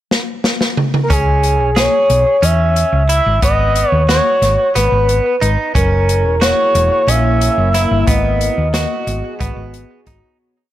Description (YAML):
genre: progressive instrumental, band music in an uneven meter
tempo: 181 BPM (eighths)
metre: 7/8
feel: straight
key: G# minor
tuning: A4 = 440 Hz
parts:
  - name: open jazz drum kit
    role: drums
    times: 0.1-10.2 s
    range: hi-hat, kick drum, snare drum, toms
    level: -18 LUFS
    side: left 1 dB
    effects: none
  - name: expressive synth lead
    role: melody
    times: 1.0-9.7 s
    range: G#4 to E5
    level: -15 LUFS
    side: equal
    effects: chorus
  - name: direct-recorded clean electric guitar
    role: arpeggios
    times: 1.1-10.4 s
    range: B3 to G#4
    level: -21 LUFS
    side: right 5 dB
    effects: tape echo
  - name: hollow-body short-scale fingered electric bass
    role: bass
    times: 1.1-10.2 s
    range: E1 to E2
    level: -16 LUFS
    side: equal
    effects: none
  - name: dark analog pad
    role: accompaniment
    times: 6.2-10.4 s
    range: B3 to G#4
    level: -23 LUFS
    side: left 1 dB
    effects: chorus, phaser
room: small room ambience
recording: blown-out, overdriven recording, overdrive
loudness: -12 LUFS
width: side -13 dB against mid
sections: 0.0-1.1 pickup bar; 1.1-10.4 A section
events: drum fill 0.1-1.1; fade-out 8.1-10.4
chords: 0.0 N.C.; 1.1 C#m7; 3.4 G#m7; 5.8 F#7; 8.1 G#m7